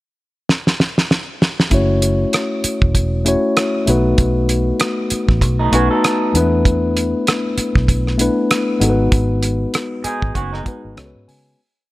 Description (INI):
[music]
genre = lush 1970s-style soul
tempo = 97 BPM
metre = 4/4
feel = swing 58% on 16ths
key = F# minor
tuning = A4 = 440 Hz
[part]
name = cloth-damped thuddy drum kit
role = drums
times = 0.5-11.4 s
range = hi-hat, kick drum, rim click, snare drum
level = -17 LUFS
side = right 1 dB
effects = none
[part]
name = mellow tine electric piano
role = accompaniment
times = 1.7-11.6 s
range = G#3 to G#5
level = -18 LUFS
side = left 2 dB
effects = none
[part]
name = vintage muted fingered electric bass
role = bass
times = 1.7-11.5 s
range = E1 to C#3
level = -18 LUFS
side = equal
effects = none
[part]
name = electric guitar through a small old amp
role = riff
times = 5.6-6.3, 10.0-10.9 s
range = G#3 to A4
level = -21 LUFS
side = right 4 dB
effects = warbly pitch drift
[sound]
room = small room ambience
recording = none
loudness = -14 LUFS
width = side -18 dB against mid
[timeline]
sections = 0.0-1.7 pickup bar; 1.7-11.6 verse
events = drum fill 0.5-1.7; fade-out 9.1-11.6; tine electric piano fill 10.7-11.6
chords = 0.0 N.C.; 1.7 F#m7; 3.9 B7; 6.3 E7sus4; 8.8 G#m7; 11.0 C#7sus4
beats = 0.48 1.10 | 1.72 2.33 2.95 3.57 | 4.18 4.80 5.42 6.03 | 6.65 7.26 7.88 8.50 | 9.12 9.73 10.35 10.97